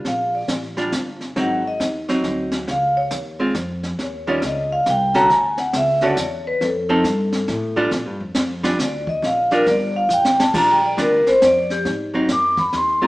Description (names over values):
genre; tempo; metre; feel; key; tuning
jazz, small-group swing and bop; 137 BPM; 3/4; swing 65% on 8ths; Bb major; A4 = 444 Hz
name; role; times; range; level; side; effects
archtop guitar, miked and amplified; accompaniment; 0.0-13.1 s; D3 to A4; -21 LUFS; right 1 dB; none
upright bass; bass; 0.0-13.1 s; G1 to Bb2; -28 LUFS; equal; none
jazz brush drum kit; drums; 0.0-13.1 s; brushed snare drum, crash cymbal, hi-hat, kick drum, snare drum; -25 LUFS; equal; none
vibraphone with medium hard mallets; melody; 0.1-13.1 s; G4 to D6; -18 LUFS; equal; none
room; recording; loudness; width
wet stone room reverb, RT60 1.1 s; band playing live in one room, small speaker sound; -17 LUFS; side -19 dB against mid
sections
0.1-10.5 A section; 10.5-13.1 A section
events
vibraphone solo 0.1-13.1; drum fill 10.1-10.5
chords
0.1 Bb5; 1.4 Ab7; 2.7 Db; 4.0 Eb7(no3); 5.3 Dmaj7(no3); 6.6 F; 7.9 Bb6; 11.9 Ab7